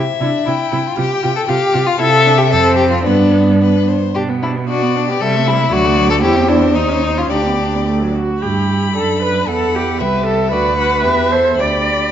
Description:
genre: quick classical-period movement for string quartet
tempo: 105-119 BPM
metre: 2/4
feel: rubato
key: C major, G major from 4.2 s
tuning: A4 = 441 Hz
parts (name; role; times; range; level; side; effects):
- clear violin; melody; 0.0-12.1 s; B4 to B5; -21 LUFS; left 10 dB; none
- clear cello; bass; 0.0-12.1 s; C2 to C3; -18 LUFS; right 3 dB; none
- clear violin; second line; 0.2-12.1 s; D4 to A4; -17 LUFS; left 2 dB; none
- rich viola; accompaniment; 0.2-12.1 s; F#3 to D5; -18 LUFS; right 2 dB; none
room: wet recital hall reverb, RT60 1.5 s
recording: dark, warm production, nothing above 7.7 kHz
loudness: -12 LUFS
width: side -10 dB against mid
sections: 0.0-8.4 A section; 8.4-12.1 B section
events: none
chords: 0.0 C; 1.0 F5/C; 2.0 C; 2.5 F; 3.1 G; 4.2 Bm; 5.2 Am7/C; 5.7 D; 6.2 C/E; 6.8 C#maj9/D#; 7.3 G/D; 7.9 D; 8.4 G; 9.5 Em; 10.0 Am7/C; 10.5 D; 11.1 Em; 11.6 G/D

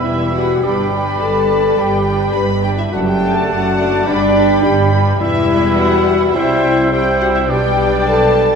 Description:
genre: quick classical-period movement for symphony orchestra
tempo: 105 BPM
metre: 4/4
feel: rubato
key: G major from 5.2 s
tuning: A4 = 444 Hz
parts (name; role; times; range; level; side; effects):
- muted studio violin section; melody; 0.0-8.6 s; D5 to B5; -24 LUFS; left 2 dB; none
- dark clarinet; second line; 0.0-8.6 s; B4 to D5; -24 LUFS; left 1 dB; none
- muted symphonic violin section; second line; 0.0-8.6 s; B4 to B5; -26 LUFS; left 1 dB; none
- silver concert flute; second line; 0.0-8.4 s; G5 to B5; -24 LUFS; equal; none
- warm oboe; second line; 0.0-8.6 s; D5 to G5; -24 LUFS; right 2 dB; none
- clear bassoon; accompaniment; 0.0-8.6 s; G3 to A3; -23 LUFS; right 2 dB; none
- muted studio viola section; accompaniment; 0.0-8.6 s; G3 to E4; -23 LUFS; right 1 dB; none
- dark French horn section; sustained chords; 0.0-8.6 s; D4 to B4; -16 LUFS; left 2 dB; none
- muted studio cello section; bass; 0.1-8.6 s; E2 to C3; -21 LUFS; right 2 dB; none
- muted studio double bass section; bass; 0.1-8.6 s; E1 to C2; -22 LUFS; right 2 dB; none
room: wet recital hall reverb, RT60 1.5 s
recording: recorded in a church or concert hall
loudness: -12 LUFS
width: side -6 dB against mid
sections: 0.0-8.6 A section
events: none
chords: 0.0 Em; 0.6 G; 2.9 D/F#; 4.1 G; 5.2 Em; 6.4 C; 7.5 G/B

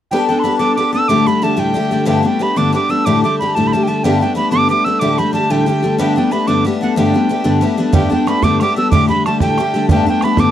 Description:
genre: celtic folk, Celtic jig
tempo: 123 BPM (dotted quarters)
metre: 6/8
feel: straight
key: G major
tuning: A4 = 440 Hz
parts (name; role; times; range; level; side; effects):
- reedy mid whistle; melody; 0.1-10.5 s; F#5 to E6; -18 LUFS; right 3 dB; none
- picked twelve-string acoustic guitar; accompaniment; 0.1-10.5 s; D2 to A4; -14 LUFS; left 2 dB; none
- bodhran; percussion; 7.9-10.5 s; none; -16 LUFS; right 3 dB; none
room: light reverb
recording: dry, close 1970s-style studio recording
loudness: -12 LUFS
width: side -11 dB against mid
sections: 0.1-7.9 A section; 7.9-10.5 A section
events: none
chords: 0.1 Gadd9; 1.1 Dsus4; 2.1 Gadd9; 3.0 Dsus4; 4.0 Gadd9; 5.0 Dsus4; 6.0 Gadd9; 8.9 Dsus4; 9.9 Gadd9

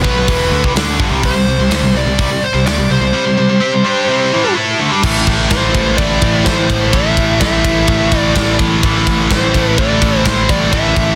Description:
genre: heavy metal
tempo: 126 BPM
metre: 4/4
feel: straight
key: unclear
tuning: A4 = 440 Hz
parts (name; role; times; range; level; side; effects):
- high-gain lead guitar; melody; 0.0-11.2 s; B4 to E5; -20 LUFS; equal; distortion, tape echo
- high-gain distorted guitar; riff; 0.0-11.2 s; E2 to A4; -20 LUFS; equal; distortion
- scooped high-gain guitar; riff; 0.0-11.2 s; E2 to A4; -21 LUFS; equal; distortion
- growling picked electric bass; bass; 0.0-11.2 s; E1 to D2; -20 LUFS; equal; overdrive
- tight metal drum kit; drums; 0.0-11.1 s; crash cymbal, hi-hat, kick drum, ride cymbal, snare drum; -19 LUFS; equal; soft clipping on kick
- heavy high-gain guitar; riff; 5.0-11.2 s; A2 to A3; -24 LUFS; equal; none
room: small room ambience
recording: dense, heavily limited modern master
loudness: -13 LUFS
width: mono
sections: 0.0-5.0 A section; 5.0-11.2 B section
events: none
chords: 0.0 Em; 1.2 C5; 5.0 Am

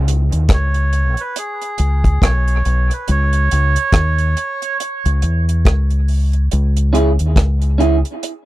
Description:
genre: dub reggae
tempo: 70 BPM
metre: 4/4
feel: swing 59% on 16ths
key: C# minor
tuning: A4 = 439 Hz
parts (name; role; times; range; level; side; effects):
- deep dub fingered electric bass; bass; 0.0-8.0 s; B1 to E2; -14 LUFS; equal; transformer saturation
- deep reggae drum kit; drums; 0.1-8.5 s; hi-hat, kick drum, rim click; -17 LUFS; equal; none
- melodica; melody; 0.5-4.8 s; G#4 to C#5; -21 LUFS; right 4 dB; dub echo
- electric guitar at the edge of break-up; accompaniment; 6.9-8.0 s; C#4 to G#4; -18 LUFS; right 3 dB; lush chorus, dub echo
room: little or no reverb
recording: dry, close 1970s-style studio recording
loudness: -14 LUFS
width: side -16 dB against mid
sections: 0.0-8.5 A section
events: break 0.0-6.5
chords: 0.0 C#5; 3.1 C#m

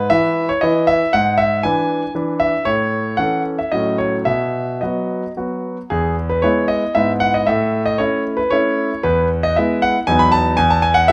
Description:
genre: classical-period piano sonatina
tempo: 115 BPM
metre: 3/4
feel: rubato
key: E major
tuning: A4 = 441 Hz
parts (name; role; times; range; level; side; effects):
- warm concert grand piano; solo; 0.0-11.1 s; E2 to B5; -17 LUFS; equal; none
room: light reverb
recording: close, detailed microphones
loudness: -18 LUFS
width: mono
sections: 0.0-5.9 A section; 5.9-11.1 B section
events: none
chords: 0.0 E5; 1.1 E7/G#; 2.7 A; 3.7 F#m/A; 4.3 B; 5.9 E; 7.0 E/G#; 7.5 A; 9.0 E; 10.1 B7/E; 10.6 E

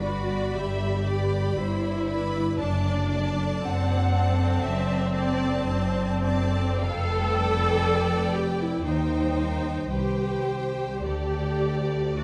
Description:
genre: classical, slow romantic movement for symphony orchestra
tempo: 49-61 BPM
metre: 4/4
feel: rubato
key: G major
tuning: A4 = 440 Hz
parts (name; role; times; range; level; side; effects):
- rich symphonic violin section; melody; 0.0-12.2 s; B4 to F#5; -38 LUFS; equal; none
- warm symphonic violin section; second line; 0.0-12.2 s; A4 to B5; -36 LUFS; equal; none
- rich symphonic viola section; accompaniment; 0.0-12.2 s; C4 to A4; -30 LUFS; equal; none
- concert harp; arpeggios; 0.0-12.2 s; F2 to G5; -36 LUFS; equal; none
- rich symphonic cello section; bass; 0.0-12.2 s; C2 to G2; -32 LUFS; equal; none
- rich symphonic double bass section; bass; 0.0-12.2 s; F1 to Eb2; -32 LUFS; equal; none
room: light reverb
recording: none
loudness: -26 LUFS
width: mono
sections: 0.0-12.2 A section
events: none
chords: 0.0 G; 2.6 D7/F#; 6.8 G7/F; 8.9 Cm/Eb; 11.0 D5

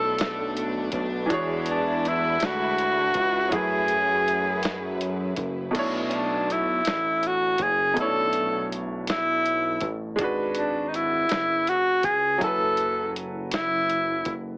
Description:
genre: slow six-eight R&B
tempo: 54 BPM (dotted quarters)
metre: 6/8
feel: straight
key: B dorian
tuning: A4 = 440 Hz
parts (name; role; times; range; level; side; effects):
- breathy tenor saxophone; melody; 0.0-14.3 s; C#4 to A4; -23 LUFS; equal; slapback echo
- clear baby grand piano; accompaniment; 0.0-14.6 s; B2 to G#5; -31 LUFS; right 1 dB; none
- bright studio string section; sustained chords; 0.0-5.7 s; F#3 to B4; -32 LUFS; equal; none
- fat analog bass; bass; 0.0-14.6 s; F#1 to F#2; -32 LUFS; equal; none
- dusty soul sampler-style drum kit; drums; 0.2-14.4 s; crash cymbal, hi-hat, kick drum, snare drum; -30 LUFS; equal; none
room: light reverb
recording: heavily compressed radio sound, multiband compression, AM radio sound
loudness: -22 LUFS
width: side -29 dB against mid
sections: 0.0-5.7 A section; 5.7-14.6 A section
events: none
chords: 0.0 Bm11; 1.3 E13; 3.5 F#m11; 5.7 Bm11; 10.2 G#m7b5; 12.4 F#m11

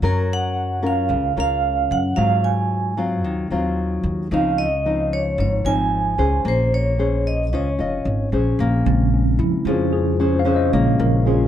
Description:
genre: bossa nova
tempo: 112 BPM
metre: 4/4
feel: straight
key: Db major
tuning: A4 = 439 Hz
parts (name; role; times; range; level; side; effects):
- nylon-string guitar; accompaniment; 0.0-11.5 s; Ab2 to Eb5; -22 LUFS; left 3 dB; none
- upright bass; bass; 0.0-11.5 s; F1 to Ab2; -22 LUFS; equal; none
- vibraphone with medium mallets; melody; 0.1-8.3 s; Bb4 to Ab5; -22 LUFS; right 3 dB; plate reverb
- tine electric piano; accompaniment; 8.9-11.5 s; Db3 to F5; -20 LUFS; right 2 dB; medium stereo tremolo
room: light reverb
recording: dark, warm production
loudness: -17 LUFS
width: side -10 dB against mid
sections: 0.0-8.6 A section; 8.6-11.5 B section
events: tine electric piano solo 8.6-11.5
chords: 0.0 Gbmaj7; 2.2 Ab6; 4.3 Dbmaj9; 6.4 Bbm9; 7.5 Dbmaj9; 8.6 Bbm9

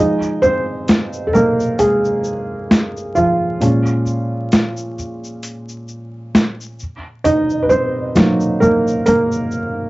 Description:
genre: lo-fi hip hop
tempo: 66 BPM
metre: 4/4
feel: swing 56% on 16ths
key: Bb minor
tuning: A4 = 435 Hz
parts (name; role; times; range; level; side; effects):
- felt-muted upright piano; accompaniment; 0.0-9.9 s; Bb2 to Ab5; -16 LUFS; right 1 dB; cassette tape, low-pass filter
- boom bap sampler-style drum kit; drums; 0.2-9.7 s; hi-hat, shaker, snare drum; -16 LUFS; equal; overdrive, vintage 12-bit sampler grit
room: moderate small room reverb, RT60 0.5 s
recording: dark, warm production, vinyl crackle, nothing above 7.7 kHz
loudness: -14 LUFS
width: side -20 dB against mid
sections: 0.0-9.9 A section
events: break 0.0-9.9; felt piano solo 0.0-9.9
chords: 0.0 Fm7; 3.6 Bbm7; 6.8 Gb6

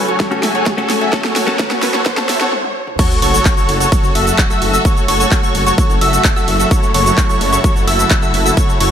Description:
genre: EDM, festival progressive house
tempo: 129 BPM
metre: 4/4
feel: straight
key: F# minor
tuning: A4 = 440 Hz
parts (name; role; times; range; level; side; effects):
- direct-recorded clean electric guitar; accompaniment; 0.0-2.3 s; A3 to B4; -23 LUFS; left 3 dB; phaser, sidechain pumping, dub echo
- dark studio string section; sustained chords; 0.0-8.9 s; C#3 to G#5; -22 LUFS; left 1 dB; sidechain pumping
- dense compressed supersaw; riff; 0.0-8.9 s; F#4 to E5; -18 LUFS; right 1 dB; sidechain pumping, low-pass filter, dub echo
- riser and sub drop; sound effects; 0.0-4.9 s; none; -24 LUFS; right 1 dB; none
- big-room dance drum kit; drums; 0.1-8.9 s; cabasa, crash cymbal, handclaps, hi-hat, ride cymbal, snare drum, toms; -20 LUFS; equal; overdrive
- electronic kick drum; drums; 0.2-8.7 s; none; -14 LUFS; equal; overdrive
- plucky unison lead; arpeggios; 3.0-8.9 s; C#6 to E6; -19 LUFS; equal; sidechain pumping, dub echo
- wide detuned saw bass; bass; 3.2-8.9 s; F#1; -18 LUFS; equal; chorus, sidechain pumping
room: light reverb, digital ambience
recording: high-pass filter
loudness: -11 LUFS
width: side -9 dB against mid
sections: 0.0-3.0 A section; 3.0-8.9 B section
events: build-up 0.0-3.0; drum fill 0.0-2.5, 2.5-3.0; riser 0.0-2.5; stop 2.5-3.0; drop 3.0-8.9; impact 3.0-4.9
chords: 0.0 F#m

